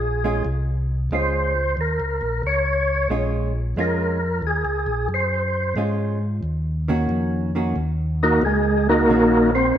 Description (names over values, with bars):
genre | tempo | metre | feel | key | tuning
soul jazz organ trio | 90 BPM | 4/4 | swing 67% on 8ths | Bb minor | A4 = 440 Hz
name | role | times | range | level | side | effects
percussive tonewheel organ | melody | 0.0-9.8 s | Ab3 to Db5 | -20 LUFS | equal | slow rotary speaker, overdrive, chorus vibrato
mellow tonewheel organ | bass | 0.0-9.8 s | F1 to Ab2 | -24 LUFS | equal | slow rotary speaker
vintage hollow-body jazz guitar | accompaniment | 0.2-9.5 s | Eb3 to Gb4 | -26 LUFS | right 1 dB | none
room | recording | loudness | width
wet echo chamber reverb, RT60 1.8 s | heard from further back in the room | -19 LUFS | side -10 dB against mid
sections
0.0-9.8 A section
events
tonewheel organ solo 0.0-9.8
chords
0.0 Bbm7; 6.4 Ebm7